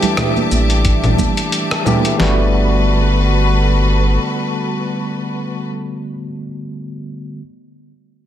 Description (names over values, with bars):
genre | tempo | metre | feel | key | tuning
sunset chillout | 89 BPM | 4/4 | swing 56% on 16ths | G major | A4 = 441 Hz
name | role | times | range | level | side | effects
nylon-string guitar | melody | 0.0-1.5 s | G4 | -31 LUFS | equal | none
overdriven tine electric piano | accompaniment | 0.0-7.4 s | D3 to G4 | -20 LUFS | equal | auto-pan, digital delay
rich studio string section | sustained chords | 0.0-5.7 s | G3 to D6 | -21 LUFS | left 2 dB | none
dusty soul sampler-style drum kit | drums | 0.0-2.2 s | congas, hi-hat, rim click, shaker | -19 LUFS | left 1 dB | none
congas | percussion | 0.0-2.0 s | none | -22 LUFS | right 6 dB | none
warm sub bass | bass | 0.5-4.2 s | G1 to A1 | -15 LUFS | equal | none
dusty soul sampler-style drum kit | drums | 0.8-2.4 s | kick drum, snare drum | -19 LUFS | equal | none
room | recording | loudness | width
light reverb, digital ambience | none | -14 LUFS | side -11 dB against mid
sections
0.0-2.2 A section; 2.2-4.9 B section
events
none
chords
0.0 A7sus4; 2.2 Gmaj9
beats
0.18 0.85 1.52 | 2.20 2.87 3.55 4.22